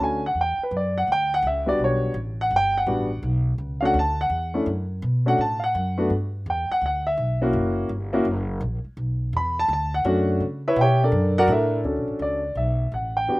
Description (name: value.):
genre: jazz piano trio.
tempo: 167 BPM.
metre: 4/4.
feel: swing 65% on 8ths.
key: B minor.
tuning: A4 = 440 Hz.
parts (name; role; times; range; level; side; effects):
warm grand piano; melody; 0.0-13.4 s; G3 to B5; -22 LUFS; equal; none.
upright bass; bass; 0.0-13.4 s; F#1 to C#3; -25 LUFS; equal; none.
room: little or no reverb.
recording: recorded outdoors, with no room sound.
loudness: -21 LUFS.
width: side -20 dB against mid.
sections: 0.0-11.8 A section; 11.8-13.4 B section.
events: grand piano solo 0.0-11.8.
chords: 0.4 Em9; 3.2 Bm9; 6.1 Gmaj7; 7.5 F#7; 9.0 Bm9; 10.4 C#m7b5; 11.1 F#7alt; 11.8 Bm9.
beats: | 0.35 0.71 1.07 1.43 | 1.79 2.15 2.51 2.87 | 3.23 3.59 3.95 4.31 | 4.67 5.03 5.39 5.75 | 6.11 6.47 6.83 7.18 | 7.54 7.90 8.26 8.62 | 8.98 9.34 9.70 10.05 | 10.41 10.77 11.13 11.49 | 11.85 12.21 12.57 12.93 | 13.28.